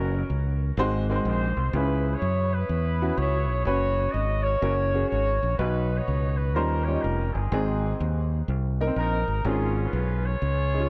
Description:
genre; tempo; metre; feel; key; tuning
uptempo gospel; 125 BPM; 4/4; swing 65% on 8ths; unclear; A4 = 439 Hz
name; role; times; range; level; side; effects
mellow horn section; melody; 0.0-10.9 s; B#3 to D#5; -31 LUFS; equal; tape echo
dark upright piano; accompaniment; 0.0-10.9 s; G#2 to D#5; -32 LUFS; equal; tape echo
fingered electric bass; bass; 0.0-10.9 s; E#1 to F#2; -28 LUFS; equal; none
room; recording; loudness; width
small room reverb; echo-heavy mix; -26 LUFS; mono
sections
0.0-10.9 A section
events
none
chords
0.0 F#; 0.8 G#7; 1.7 C#m; 3.7 F#sus4; 4.6 F#; 5.6 B; 6.5 D#13; 7.5 G#; 9.4 C#/G#

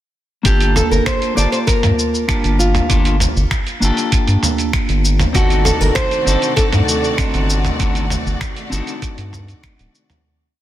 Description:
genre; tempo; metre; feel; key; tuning
sunset chillout; 98 BPM; 4/4; straight; G minor; A4 = 440 Hz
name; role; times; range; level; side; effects
clean electric guitar; accompaniment; 0.4-10.2 s; Bb3 to A5; -21 LUFS; moving between left 5 dB and right 2 dB; auto-pan, tape echo
round analog bass; bass; 0.4-9.9 s; D1 to G2; -16 LUFS; equal; none
dusty soul sampler-style drum kit; drums; 0.4-10.2 s; cabasa, finger snaps, hi-hat, toms; -21 LUFS; right 1 dB; soft clipping on snare
nylon-string guitar; melody; 0.5-9.6 s; F4 to D5; -20 LUFS; equal; tape echo
electronic kick drum; drums; 0.5-9.8 s; none; -19 LUFS; equal; none
rich symphonic string section; sustained chords; 5.3-10.2 s; C3 to D5; -25 LUFS; left 1 dB; none
room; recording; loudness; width
light reverb, digital ambience; dense, heavily limited modern master; -14 LUFS; side -13 dB against mid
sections
0.5-10.2 groove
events
fade-out 7.0-10.2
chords
0.5 Gm7; 5.3 D7b9/G

